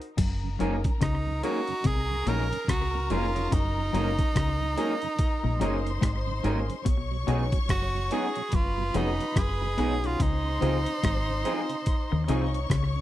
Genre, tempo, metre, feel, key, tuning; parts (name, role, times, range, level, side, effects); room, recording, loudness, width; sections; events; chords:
lovers rock reggae; 72 BPM; 4/4; swing 60% on 16ths; A4 = 440 Hz
boom bap sampler-style drum kit; drums; 0.0-12.9 s; crash cymbal, hi-hat, kick drum, rim click; -28 LUFS; equal
warm studio string section; second line; 0.2-13.0 s; Bb4 to Db6; -37 LUFS; left 5 dB
semi-hollow electric guitar; riff; 0.2-13.0 s; F2 to Eb3; -33 LUFS; left 6 dB; slapback echo
deep dub fingered electric bass; bass; 0.2-13.0 s; F1 to Eb2; -29 LUFS; equal
mellow tonewheel organ; accompaniment; 0.4-13.0 s; Gb2 to Eb4; -38 LUFS; right 8 dB; slow rotary speaker, slapback echo
clear baby grand piano; accompaniment; 0.6-12.4 s; C4 to Bb4; -34 LUFS; left 4 dB; slapback echo
electric guitar through a small old amp; stabs; 0.6-12.4 s; F3 to Ab4; -32 LUFS; right 3 dB; analog chorus
bright tenor saxophone; melody; 1.0-12.7 s; Eb4 to Bb4; -31 LUFS; right 2 dB; tape echo
little or no reverb; dry, close 1970s-style studio recording; -24 LUFS; side -14 dB against mid
0.2-13.0 A section
0.2 Gb69; 6.9 Cb6; 10.2 Dbmaj9